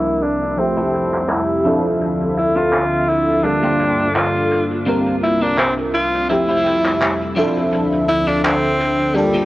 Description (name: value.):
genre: vaporwave.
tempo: 84 BPM.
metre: 4/4.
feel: swing 55% on 16ths.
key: unclear.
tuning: A4 = 439 Hz.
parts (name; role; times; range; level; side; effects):
bright tenor saxophone; melody; 0.0-9.5 s; G3 to F4; -18 LUFS; equal; tape echo.
FM electric piano with soft pad layer; accompaniment; 0.0-9.5 s; F3 to E5; -20 LUFS; equal; ensemble chorus.
warbly tape-like pad; sustained chords; 0.0-9.5 s; C2 to E5; -26 LUFS; left 1 dB; chorus, built-in reverb, vintage 12-bit sampler grit.
modern studio drum kit; drums; 0.1-9.5 s; handclaps, hi-hat; -25 LUFS; equal; low-pass filter on hats, low-pass filter on snare, low-pass filter on room.
clean electric guitar; riff; 0.2-9.5 s; Bb3 to D5; -25 LUFS; left 1 dB; ensemble chorus, low-pass filter, analog delay.
room: light reverb, small room ambience.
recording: worn, warbling old tape, cassette tape, warbly pitch drift, low-pass filter.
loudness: -15 LUFS.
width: side -17 dB against mid.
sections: 0.0-9.5 A section.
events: filter sweep on clean electric guitar 0.0-9.5; filter sweep 0.0-9.5.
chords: 0.0 C7sus4; 0.6 Fmaj9; 1.7 Dm9; 3.4 Gm9; 4.9 C7sus4; 6.3 Fmaj9; 7.4 Dm9.